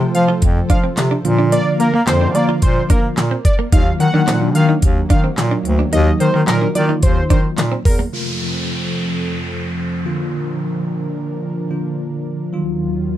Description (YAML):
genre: dance-pop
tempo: 109 BPM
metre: 4/4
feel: straight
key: Bb major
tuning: A4 = 440 Hz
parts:
  - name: bell-like tine electric piano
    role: accompaniment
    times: 0.0-13.2 s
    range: C3 to F4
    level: -21 LUFS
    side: left 1 dB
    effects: medium stereo tremolo, sidechain pumping
  - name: warm analog pad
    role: sustained chords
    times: 0.0-13.2 s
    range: Eb2 to F5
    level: -25 LUFS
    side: right 2 dB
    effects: chorus, sidechain pumping
  - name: direct-recorded clean electric guitar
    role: riff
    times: 0.0-8.1 s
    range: Bb3 to F4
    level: -24 LUFS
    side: right 4 dB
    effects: lush chorus
  - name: warm bass clarinet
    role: bass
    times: 0.0-8.0 s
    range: D2 to Bb3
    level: -17 LUFS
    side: equal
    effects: sidechain pumping
  - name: fat analog lead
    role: melody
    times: 0.1-8.0 s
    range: Bb4 to Gb5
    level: -22 LUFS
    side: equal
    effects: sidechain pumping, tape echo
  - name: pop drum kit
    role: drums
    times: 0.1-8.0 s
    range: handclaps, hi-hat, kick drum, snare drum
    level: -16 LUFS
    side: equal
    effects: none
  - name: downlifter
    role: sound effects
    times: 8.1-12.5 s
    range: none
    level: -28 LUFS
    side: equal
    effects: none
room: light reverb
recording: none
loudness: -14 LUFS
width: side -12 dB against mid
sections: 0.0-8.1 A section; 8.1-13.2 B section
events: drop 0.0-8.1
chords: 0.0 F; 1.2 Bb; 3.7 Ebmadd9; 8.1 F; 10.1 Bb; 12.5 Ebmadd9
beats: 0.42 0.97 | 1.52 2.07 2.62 3.17 | 3.73 4.28 4.83 5.38 | 5.93 6.48 7.03 7.58 | 8.13 8.68 9.23 9.78 | 10.33 10.88 11.43 11.98 | 12.53 13.08